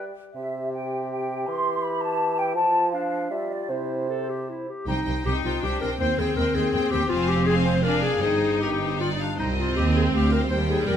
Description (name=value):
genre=quick classical-period movement for symphony orchestra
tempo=152-167 BPM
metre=3/4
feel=rubato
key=C major, C minor from 4.9 s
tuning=A4 = 440 Hz
part: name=mellow hollow flute section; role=second line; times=0.0-4.7 s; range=C5 to C6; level=-26 LUFS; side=equal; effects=none
part: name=warm clarinet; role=second line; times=0.0-11.0 s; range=D4 to C5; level=-28 LUFS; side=left 2 dB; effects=none
part: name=warm bassoon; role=accompaniment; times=0.0-4.7 s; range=C3 to G3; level=-30 LUFS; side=right 1 dB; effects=none
part: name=warm chamber violin section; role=melody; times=4.9-11.0 s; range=G5 to Ab5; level=-35 LUFS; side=left 9 dB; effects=none
part: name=bright symphonic violin section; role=second line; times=4.9-11.0 s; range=Bb4 to G5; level=-32 LUFS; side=equal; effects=none
part: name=rich chamber cello section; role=bass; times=4.9-11.0 s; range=C2 to G2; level=-28 LUFS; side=right 2 dB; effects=none
part: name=warm chamber double bass section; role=bass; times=4.9-11.0 s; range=F1 to Eb2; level=-27 LUFS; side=right 2 dB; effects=none
part: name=clear chamber viola section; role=accompaniment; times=5.3-11.0 s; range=G3 to Eb4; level=-27 LUFS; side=left 1 dB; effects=none
room=moderate scoring stage reverb, RT60 1.6 s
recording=none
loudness=-22 LUFS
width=side -9 dB against mid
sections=0.0-4.9 A section; 4.9-11.0 B section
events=none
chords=0.4 C; 1.5 C/E; 2.6 N.C.; 2.9 Dm/F; 3.3 G5; 3.7 C; 4.9 Cm; 6.0 Cm/Eb; 7.1 Fm; 7.8 Ddim/F; 8.2 Cm/G; 9.4 Cm